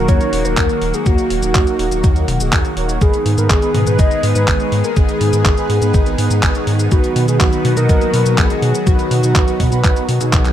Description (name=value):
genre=italo disco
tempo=123 BPM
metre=4/4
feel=straight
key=unclear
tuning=A4 = 440 Hz
part: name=soft octave-layered synth lead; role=melody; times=0.0-10.3 s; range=Gb4 to Eb5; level=-20 LUFS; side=left 1 dB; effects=chorus, tape echo, shimmer reverb
part: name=lush unison pad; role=sustained chords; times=0.0-10.5 s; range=Eb3 to Ab4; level=-21 LUFS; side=equal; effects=chorus, phaser, shimmer reverb
part: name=mellow synth brass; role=stabs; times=0.0-10.5 s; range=Bb3 to D#5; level=-23 LUFS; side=right 4 dB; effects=chorus, shimmer reverb
part: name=round analog bass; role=bass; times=0.0-10.5 s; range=Eb1 to B2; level=-17 LUFS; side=equal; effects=none
part: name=detuned 8-bit digital drum machine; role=drums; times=0.1-10.5 s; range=cabasa, handclaps, hi-hat, toms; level=-21 LUFS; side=left 1 dB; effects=none
part: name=electronic kick drum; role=drums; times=0.1-10.4 s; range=none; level=-15 LUFS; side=equal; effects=none
room=little or no reverb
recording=none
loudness=-12 LUFS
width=side -11 dB against mid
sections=0.0-10.5 A section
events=none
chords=0.0 Ebm; 3.0 Abm; 6.9 B